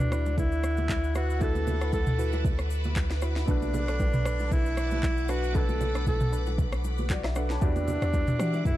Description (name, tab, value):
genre	amapiano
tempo	116 BPM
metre	4/4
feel	swing 55% on 16ths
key	unclear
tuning	A4 = 439 Hz
part	breathy alto saxophone	melody	0.0-8.8 s	D4 to A4	-32 LUFS	equal	tape echo
part	clear grand piano	accompaniment	0.0-8.8 s	A3 to A5	-40 LUFS	left 7 dB	none
part	phased string machine	sustained chords	0.0-8.8 s	E4 to D6	-40 LUFS	equal	ensemble chorus, phaser, sidechain pumping
part	soft round pluck	stabs	0.0-8.6 s	D4 to D5	-38 LUFS	right 5 dB	chorus, tape echo
part	saturated sub bass	bass	0.0-7.6 s	B1 to D2	-29 LUFS	equal	none
part	afro-pop drum kit	drums	0.0-8.8 s	handclaps, kick drum, rim click, shaker, snare drum, toms	-29 LUFS	equal	none
part	bongos and congas	percussion	0.3-8.8 s	none	-37 LUFS	right 4 dB	none
part	deep log drum bass	bass	7.6-8.8 s	E2 to E3	-29 LUFS	equal	none
room	digital ambience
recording	dark, warm production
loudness	-25 LUFS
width	side -14 dB against mid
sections	0.0-8.8 A section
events	none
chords	0.0 D69; 3.5 Bm7; 7.6 Em9